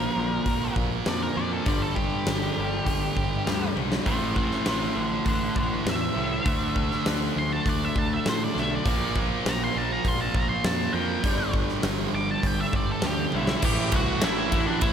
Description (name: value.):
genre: quiet-loud alternative rock.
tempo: 100 BPM.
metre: 4/4.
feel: straight.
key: unclear.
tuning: A4 = 444 Hz.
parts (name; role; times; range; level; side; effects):
octave-fuzz lead guitar; melody; 0.0-14.9 s; D4 to D6; -30 LUFS; equal; distortion, slapback echo, digital delay.
semi-hollow electric guitar; arpeggios; 0.0-4.0 s; G2 to G3; -35 LUFS; left 6 dB; analog chorus, digital delay.
cranked stack guitar; riff; 0.0-14.9 s; G2 to D4; -32 LUFS; left 10 dB; overdrive.
thick fuzz guitar; riff; 0.0-14.9 s; G2 to D4; -29 LUFS; right 9 dB; distortion.
growling picked electric bass; bass; 0.0-14.9 s; G1 to A2; -32 LUFS; equal; overdrive.
huge arena drum kit; drums; 0.5-14.9 s; crash cymbal, hi-hat, kick drum, ride cymbal, snare drum, toms; -28 LUFS; equal; none.
room: moderate lush hall reverb, RT60 2.4 s.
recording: big arena sound.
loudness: -23 LUFS.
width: side -8 dB against mid.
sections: 0.0-13.6 A section; 13.6-14.9 B section.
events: lead electric guitar solo 0.0-13.6; drum fill 3.8-4.1, 13.3.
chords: 0.0 Bb; 1.7 G5; 4.1 A5; 6.5 D5; 8.9 Bb5; 11.2 G5; 13.6 Am.